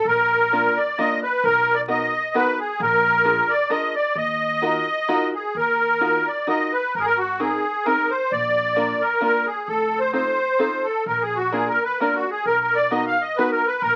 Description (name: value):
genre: musette waltz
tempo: 131 BPM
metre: 3/4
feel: straight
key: Eb harmonic minor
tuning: A4 = 440 Hz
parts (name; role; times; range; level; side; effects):
- musette accordion; melody; 0.0-14.0 s; Gb4 to F5; -22 LUFS; equal; none
- upright bass; bass; 0.0-14.0 s; F1 to Eb2; -39 LUFS; equal; none
- open-back banjo; accompaniment; 0.5-13.6 s; Bb3 to Bb4; -27 LUFS; equal; none
room: moderate club reverb, RT60 0.5 s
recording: very old 78 rpm record, vinyl crackle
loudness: -21 LUFS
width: mono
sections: 0.0-5.5 A section; 5.5-14.0 A section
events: none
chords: 0.1 Bb; 1.4 Bmaj7; 2.8 Bb7; 4.2 Ebmadd9; 6.9 Abadd9; 8.3 Bb; 9.7 F7; 11.1 Bb; 12.4 Bmaj7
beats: | 0.05 0.52 0.97 | 1.43 1.89 2.34 | 2.79 3.25 3.70 | 4.15 4.61 5.08 | 5.55 6.01 6.48 | 6.94 7.40 7.86 | 8.31 8.77 9.22 | 9.68 10.14 10.60 | 11.06 11.53 11.99 | 12.45 12.91 13.37 | 13.82